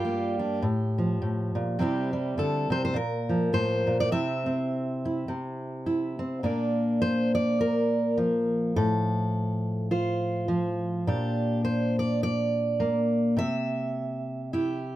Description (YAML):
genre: folk, solo fingerstyle acoustic guitar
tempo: 104 BPM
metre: 4/4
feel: swing 59% on 8ths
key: unclear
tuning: A4 = 438 Hz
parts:
  - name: fingerpicked steel-string acoustic guitar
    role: solo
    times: 0.0-15.0 s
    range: G2 to E5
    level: -25 LUFS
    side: equal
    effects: none
room: light reverb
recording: close, detailed microphones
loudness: -25 LUFS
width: side -14 dB against mid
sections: 0.0-6.4 A section; 6.4-15.0 B section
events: none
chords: 0.0 Gm; 0.6 F/A; 1.8 C; 3.0 Bb5; 4.1 C; 6.4 Bb; 8.7 F/A; 11.1 Gm/Bb; 13.4 C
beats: 0.06 0.64 1.22 | 1.80 2.38 2.95 3.53 | 4.11 4.69 5.27 5.85 | 6.43 7.01 7.59 8.17 | 8.75 9.32 9.90 10.48 | 11.06 11.64 12.22 12.79 | 13.37 13.95 14.53